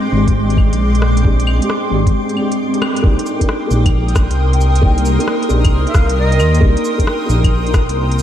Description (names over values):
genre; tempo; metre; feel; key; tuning
future garage; 134 BPM; 4/4; swing 66% on 16ths; C minor; A4 = 441 Hz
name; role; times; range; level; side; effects
felt-muted upright piano; accompaniment; 0.0-8.2 s; Ab3 to Bb4; -20 LUFS; right 1 dB; vintage 12-bit sampler grit, sidechain pumping, analog delay
granular cloud pad; sustained chords; 0.0-8.2 s; Ab3 to Eb6; -20 LUFS; left 1 dB; built-in reverb, lush chorus, sidechain pumping
dark detuned saw bass; bass; 0.1-8.2 s; Ab1 to Eb2; -14 LUFS; equal; sidechain pumping
electronic kick drum; drums; 0.3-7.9 s; none; -13 LUFS; equal; overdrive
organic electronic drum kit; drums; 0.3-8.2 s; cabasa, claves, hi-hat, rim click; -26 LUFS; left 1 dB; none
jazz flute; melody; 4.5-6.6 s; Eb5 to G5; -24 LUFS; equal; analog delay
room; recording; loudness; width
moderate lush hall reverb, RT60 1.9 s; dreamy mix soaked in reverb, cassette tape; -12 LUFS; side -10 dB against mid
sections
0.0-3.0 A section; 3.0-8.2 B section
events
break 2.1-3.0; band accent 2.8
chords
0.0 Bb13; 3.0 Cm7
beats
0.35 0.80 | 1.25 1.70 2.14 2.59 | 3.04 3.49 3.94 4.38 | 4.83 5.28 5.73 6.17 | 6.62 7.07 7.52 7.96